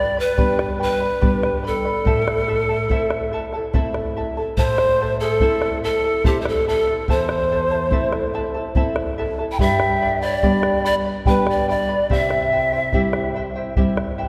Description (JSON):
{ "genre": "andean folk, Andean ensemble", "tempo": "72 BPM", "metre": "3/4", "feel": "straight", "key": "A minor", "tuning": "A4 = 440 Hz", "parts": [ { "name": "breathy bright pan flute", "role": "melody", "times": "0.0-13.7 s", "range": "G4 to G5", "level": "-24 LUFS", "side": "equal", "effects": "none" }, { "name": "charango", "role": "accompaniment", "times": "0.0-14.3 s", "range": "E4 to B5", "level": "-28 LUFS", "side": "equal", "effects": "none" }, { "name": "nylon-string guitar", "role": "accompaniment", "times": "0.0-14.3 s", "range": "E2 to E4", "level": "-28 LUFS", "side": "equal", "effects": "none" }, { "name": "bombo", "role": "percussion", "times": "0.4-14.2 s", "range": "none", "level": "-26 LUFS", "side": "equal", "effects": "none" }, { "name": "mellow large quena", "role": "second line", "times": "4.6-13.7 s", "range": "A4 to B5", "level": "-28 LUFS", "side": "equal", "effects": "none" } ], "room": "wet concert hall reverb, RT60 2.5 s", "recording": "none", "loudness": "-20 LUFS", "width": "mono", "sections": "0.0-4.6 A section; 4.6-14.3 A section", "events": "none", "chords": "0.0 G; 2.1 Am; 9.6 G; 12.1 C" }